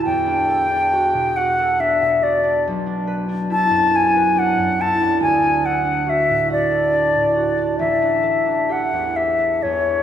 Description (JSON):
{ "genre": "classical, impressionist duo for flute and harp", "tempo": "69 BPM", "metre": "3/4", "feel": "rubato", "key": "D major", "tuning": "A4 = 440 Hz", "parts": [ { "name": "concert flute", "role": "melody", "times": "0.0-10.0 s", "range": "C#5 to A5", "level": "-17 LUFS", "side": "left 1 dB", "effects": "none" }, { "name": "concert harp", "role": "accompaniment", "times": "0.0-10.0 s", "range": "A1 to B4", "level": "-22 LUFS", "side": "right 2 dB", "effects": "none" } ], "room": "wet scoring stage reverb, RT60 1.7 s", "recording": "heard from further back in the room", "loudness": "-16 LUFS", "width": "side -9 dB against mid", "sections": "0.0-10.0 A section", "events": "none", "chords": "0.0 Em11; 2.6 Bm7; 5.2 D; 7.8 A7sus4" }